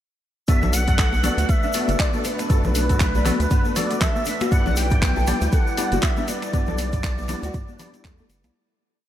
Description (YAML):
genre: afro house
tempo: 119 BPM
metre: 4/4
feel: swing 57% on 16ths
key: B minor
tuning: A4 = 440 Hz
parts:
  - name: expressive portamento lead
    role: melody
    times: 0.5-8.3 s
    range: B4 to G5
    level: -27 LUFS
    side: equal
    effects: ensemble chorus, analog delay
  - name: dark analog pad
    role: sustained chords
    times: 0.9-8.5 s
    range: G3 to B4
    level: -31 LUFS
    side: right 1 dB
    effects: chorus, sidechain pumping
  - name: nylon-string guitar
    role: arpeggios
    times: 0.5-8.5 s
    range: A3 to A4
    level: -31 LUFS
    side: left 1 dB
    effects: ensemble chorus, sidechain pumping, analog delay
  - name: percussive tonewheel organ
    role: stabs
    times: 0.5-8.3 s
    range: B3 to D5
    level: -30 LUFS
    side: left 3 dB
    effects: fast rotary speaker, sidechain pumping, analog delay
  - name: deep house drum kit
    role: drums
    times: 0.5-8.5 s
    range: finger snaps, handclaps, hi-hat, toms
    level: -28 LUFS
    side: equal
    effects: overdrive
  - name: electronic kick drum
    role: drums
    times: 0.5-8.2 s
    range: none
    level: -21 LUFS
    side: equal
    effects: none
  - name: egg shaker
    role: percussion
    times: 0.5-8.5 s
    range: none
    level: -36 LUFS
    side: left 1 dB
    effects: none
  - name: round analog bass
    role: bass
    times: 0.6-8.5 s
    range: F#1 to E2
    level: -23 LUFS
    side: equal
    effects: sidechain pumping
  - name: congas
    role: percussion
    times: 0.6-8.5 s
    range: none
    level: -30 LUFS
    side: left 2 dB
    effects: none
room: light reverb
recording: none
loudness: -18 LUFS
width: side -12 dB against mid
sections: 0.5-8.5 drop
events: drop 0.5-8.5; fade-out 5.9-8.5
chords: 0.5 Bm7; 4.5 G6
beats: | 0.48 0.99 1.49 1.99 | 2.50 3.00 3.51 4.01 | 4.51 5.02 5.52 6.03 | 6.53 7.04 7.54 8.04